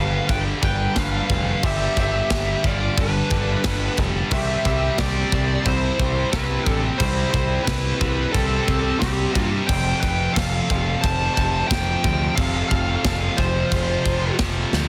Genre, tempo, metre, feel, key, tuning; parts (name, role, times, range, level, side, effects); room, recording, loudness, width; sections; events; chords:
heavy metal; 89 BPM; 4/4; straight; A4 = 439 Hz
high-gain lead guitar; melody; 0.0-14.3 s; G4 to A5; -28 LUFS; equal; distortion
high-gain lead guitar; second line; 0.0-14.3 s; C4 to C5; -34 LUFS; equal; distortion
crunchy overdriven guitar; riff; 0.0-14.9 s; F2 to C4; -32 LUFS; equal
scooped high-gain guitar; riff; 0.0-14.9 s; F2 to C4; -32 LUFS; equal; distortion
scooped high-gain guitar; riff; 0.0-14.9 s; F2 to C4; -33 LUFS; equal
growling picked electric bass; bass; 0.0-14.9 s; F1 to G2; -27 LUFS; equal; overdrive
tight metal drum kit; drums; 0.3-14.9 s; crash cymbal, kick drum, snare drum; -27 LUFS; equal; soft clipping on kick
small room ambience; dense, heavily limited modern master; -21 LUFS; mono
0.0-14.9 A section
0.0 G; 4.3 C; 9.7 F